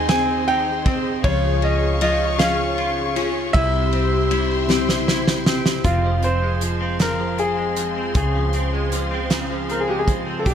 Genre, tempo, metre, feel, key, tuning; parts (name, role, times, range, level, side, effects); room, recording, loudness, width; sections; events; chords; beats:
six-eight pop ballad; 52 BPM (dotted quarters); 6/8; straight; F minor from 5.8 s; A4 = 438 Hz
clear baby grand piano; melody; 0.0-10.5 s; F4 to Ab5; -23 LUFS; equal; digital delay
direct-recorded clean electric guitar; accompaniment; 0.0-10.5 s; F2 to F4; -26 LUFS; right 1 dB; double-tracked left and right
warm studio string section; sustained chords; 0.0-10.5 s; G4 to D6; -29 LUFS; left 1 dB
fingerpicked steel-string acoustic guitar; arpeggios; 0.0-5.9 s; C3 to Ab4; -25 LUFS; left 4 dB; digital delay
vintage muted fingered electric bass; bass; 0.0-10.5 s; F1 to Eb2; -24 LUFS; equal
loose indie drum kit; drums; 0.1-10.5 s; hi-hat, kick drum, ride cymbal, snare drum; -23 LUFS; right 1 dB
light reverb, small room ambience; -18 LUFS; side -8 dB against mid
0.0-5.8 A section; 5.8-10.5 B section
drum fill 4.7-5.8
0.0 Ab/Eb; 1.2 Db; 3.5 C; 5.8 Fm; 8.2 Dbmaj7
0.09 | 1.24 2.39 | 3.54 4.70 | 5.85 7.00 | 8.15 9.31 | 10.46